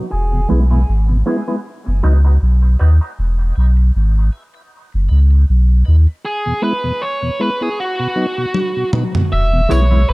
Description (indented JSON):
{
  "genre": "dub reggae",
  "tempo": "78 BPM",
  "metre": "4/4",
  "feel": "swing 57% on 16ths",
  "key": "E major",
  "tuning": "A4 = 442 Hz",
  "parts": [
    { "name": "electric guitar with an envelope filter", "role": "accompaniment", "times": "0.0-3.1, 9.7-10.0 s", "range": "F#3 to E4", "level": "-25 LUFS", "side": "right 2 dB", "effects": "high-pass filter, low-pass filter, dub echo" },
    { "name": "mellow tonewheel organ", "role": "accompaniment", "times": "0.0-10.0 s", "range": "E2 to E4", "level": "-22 LUFS", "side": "left 1 dB", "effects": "slow rotary speaker, high-pass filter, low-pass filter" },
    { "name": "biting lead guitar", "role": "melody", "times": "0.1-0.5, 6.3-10.1 s", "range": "F#4 to E5", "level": "-20 LUFS", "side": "right 1 dB", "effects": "overdrive, low-pass filter, dub echo" },
    { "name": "warm sub bass", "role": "bass", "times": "0.1-10.1 s", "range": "E1 to D#2", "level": "-11 LUFS", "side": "equal", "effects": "none" },
    { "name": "electronic toms", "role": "drums", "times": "8.5-9.3 s", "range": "none", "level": "-18 LUFS", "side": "equal", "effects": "none" },
    { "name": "tambourine", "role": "percussion", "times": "9.7-9.9 s", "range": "none", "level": "-39 LUFS", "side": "right 5 dB", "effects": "dub echo" }
  ],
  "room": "little or no reverb",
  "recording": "dark, warm production",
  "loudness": "-13 LUFS",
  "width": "side -23 dB against mid",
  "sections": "0.0-9.3 A section",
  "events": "filter sweep 0.0-9.3; break 6.2-9.3; drum fill 8.5-9.3; part muted 9.3-10.1",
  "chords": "0.1 E; 1.6 B; 3.2 E; 4.7 B; 6.2 E; 7.8 B; 9.3 E"
}